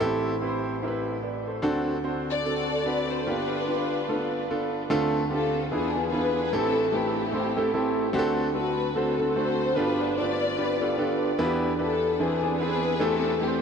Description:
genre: uptempo gospel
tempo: 148 BPM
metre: 4/4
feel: swing 58% on 8ths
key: unclear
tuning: A4 = 440 Hz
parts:
  - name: warm baby grand piano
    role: accompaniment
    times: 0.0-13.6 s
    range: G1 to D5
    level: -26 LUFS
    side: right 1 dB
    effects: none
  - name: dark studio string section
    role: melody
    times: 2.3-13.6 s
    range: B3 to D5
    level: -27 LUFS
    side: left 2 dB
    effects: ping-pong delay
room: wet huge ambient reverb, RT60 7.6 s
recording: dreamy mix soaked in reverb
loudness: -24 LUFS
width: side -6 dB against mid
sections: 0.0-4.9 A section; 4.9-13.6 B section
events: none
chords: 0.0 Am7; 1.6 D7; 3.3 G7; 4.9 Dm7; 5.7 E7b9; 6.5 Am7; 8.1 D7; 9.8 G7; 11.4 Em7; 12.2 E7b13; 13.0 Am7/E

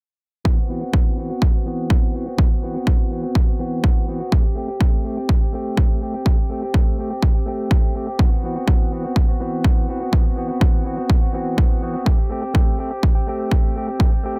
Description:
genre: filtered disco house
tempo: 124 BPM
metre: 4/4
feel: straight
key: unclear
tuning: A4 = 440 Hz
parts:
  - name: direct-recorded clean electric guitar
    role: riff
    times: 0.4-14.4 s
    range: E3 to G4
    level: -28 LUFS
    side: equal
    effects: sidechain pumping, low-pass filter
  - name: electronic kick drum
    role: drums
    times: 0.5-14.1 s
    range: none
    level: -19 LUFS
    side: equal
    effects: none
room: digital ambience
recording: dense, heavily limited modern master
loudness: -20 LUFS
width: mono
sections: 0.5-14.4 A section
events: filter sweep on clean electric guitar 0.5-14.4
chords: 0.5 Cmaj7#11/E; 4.3 Am7; 8.2 Cmaj7#11/E; 12.1 Am7

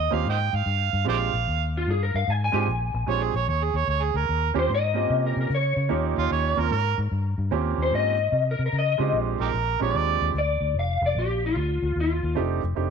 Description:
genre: blues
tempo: 149 BPM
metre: 4/4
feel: swing 66% on 8ths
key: unclear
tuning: A4 = 440 Hz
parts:
  - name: overdriven harmonica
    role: second line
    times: 0.0-7.0, 9.4-10.3 s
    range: Eb4 to G5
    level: -26 LUFS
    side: right 9 dB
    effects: none
  - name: vintage muted fingered electric bass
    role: bass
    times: 0.0-12.9 s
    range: F1 to Db3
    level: -26 LUFS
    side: left 2 dB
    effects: none
  - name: clear upright piano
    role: accompaniment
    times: 0.1-12.9 s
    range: Ab3 to Bb4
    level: -28 LUFS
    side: right 12 dB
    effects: none
  - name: electric guitar through a small old amp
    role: melody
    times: 1.8-12.4 s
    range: F4 to Ab5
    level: -26 LUFS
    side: left 4 dB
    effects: ensemble chorus, slapback echo
room: light reverb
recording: 1960s-style stereo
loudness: -22 LUFS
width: side -6 dB against mid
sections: 0.0-12.9 A section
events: none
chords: 0.0 Ebadd9; 1.1 Bb13; 4.3 Eb13; 9.1 Bb13; 10.7 F13

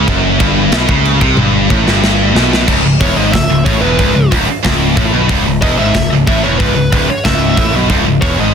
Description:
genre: heavy metal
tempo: 184 BPM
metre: 4/4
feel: straight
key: C# minor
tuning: A4 = 440 Hz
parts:
  - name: heavy high-gain guitar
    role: riff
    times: 0.0-8.5 s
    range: C#2 to C#3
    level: -15 LUFS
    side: right 16 dB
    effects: distortion
  - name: scooped high-gain guitar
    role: riff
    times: 0.0-8.5 s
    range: C#2 to C#3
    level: -15 LUFS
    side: left 10 dB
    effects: distortion
  - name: overdriven picked electric bass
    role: bass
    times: 0.0-8.5 s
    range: C#1 to C#2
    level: -16 LUFS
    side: equal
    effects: none
  - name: tight metal drum kit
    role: drums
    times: 0.1-8.3 s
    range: crash cymbal, hi-hat, kick drum, snare drum, toms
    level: -15 LUFS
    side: equal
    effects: soft clipping on kick
  - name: high-gain lead guitar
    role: melody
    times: 3.0-8.5 s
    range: B4 to E5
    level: -18 LUFS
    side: equal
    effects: distortion, ping-pong delay
room: little or no reverb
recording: dense, heavily limited modern master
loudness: -9 LUFS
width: side -7 dB against mid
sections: 0.0-2.7 A section; 2.7-8.5 B section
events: drum fill 1.4-2.7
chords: 0.1 F#5; 2.7 C#m

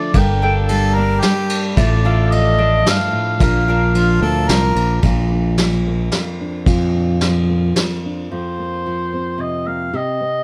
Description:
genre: folk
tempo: 110 BPM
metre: 3/4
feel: straight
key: unclear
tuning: A4 = 440 Hz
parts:
  - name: warm oboe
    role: melody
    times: 0.0-4.5, 8.3-10.4 s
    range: C5 to G5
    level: -23 LUFS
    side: equal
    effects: plate reverb
  - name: nylon-string guitar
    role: accompaniment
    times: 0.0-10.4 s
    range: F2 to A4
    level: -24 LUFS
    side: equal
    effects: none
  - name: mandolin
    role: arpeggios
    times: 0.0-5.1 s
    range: A3 to G5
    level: -28 LUFS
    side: equal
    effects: none
  - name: fretless electric bass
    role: bass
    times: 0.1-7.7 s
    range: G1 to F2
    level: -19 LUFS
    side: equal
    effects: subtle chorus
  - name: vintage brush drum kit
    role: drums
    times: 0.1-7.9 s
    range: kick drum, ride cymbal, snare drum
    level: -23 LUFS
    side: equal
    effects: none
  - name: warm harmonica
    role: second line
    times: 0.7-5.0 s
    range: F4 to Bb4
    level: -23 LUFS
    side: equal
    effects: none
room: light reverb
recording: close, detailed microphones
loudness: -17 LUFS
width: mono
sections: 0.0-5.0 A section; 5.0-8.3 B section; 8.3-10.4 C section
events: none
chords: 0.2 Gmadd9; 1.8 Dm/A; 3.4 Bb; 8.3 Fsus4

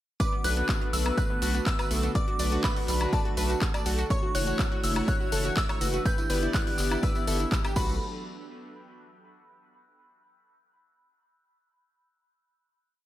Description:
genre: progressive house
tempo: 123 BPM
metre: 4/4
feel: straight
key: B minor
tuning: A4 = 440 Hz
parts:
  - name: glassy synth bell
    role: melody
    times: 0.2-8.0 s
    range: A5 to G6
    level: -35 LUFS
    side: equal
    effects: chorus, sidechain pumping, dub echo
  - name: glassy wavetable pluck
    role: second line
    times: 0.2-8.0 s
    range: A5 to G6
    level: -41 LUFS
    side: equal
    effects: none
  - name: warm analog pad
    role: sustained chords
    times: 0.2-8.0 s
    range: D3 to A4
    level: -37 LUFS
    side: right 1 dB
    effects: chorus, sidechain pumping
  - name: wide unison pluck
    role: arpeggios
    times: 0.2-7.9 s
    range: B3 to D5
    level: -35 LUFS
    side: right 1 dB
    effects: sidechain pumping, dub echo
  - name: electronic kick drum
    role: drums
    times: 0.2-7.9 s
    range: none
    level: -28 LUFS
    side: equal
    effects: studio reverb
  - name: house drum kit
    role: drums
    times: 0.2-7.9 s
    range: crash cymbal, handclaps, hi-hat, woodblock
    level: -35 LUFS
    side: left 2 dB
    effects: studio reverb
  - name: tambourine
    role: percussion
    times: 0.2-8.0 s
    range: none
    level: -40 LUFS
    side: left 3 dB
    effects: none
  - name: chorused polysynth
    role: stabs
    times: 0.4-7.9 s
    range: A3 to E5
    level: -34 LUFS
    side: left 1 dB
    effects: sidechain pumping, dub echo
  - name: round analog bass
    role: bass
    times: 0.4-8.0 s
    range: F#1 to B1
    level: -29 LUFS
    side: equal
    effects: sidechain pumping
room: digital ambience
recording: none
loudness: -24 LUFS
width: side -14 dB against mid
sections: 0.2-8.0 drop; 8.0-10.0 final hit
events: drop 0.2-8.0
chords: 0.2 Bm7; 4.1 F#m7; 6.1 Em7/G; 7.8 Bm7; 8.0 N.C.

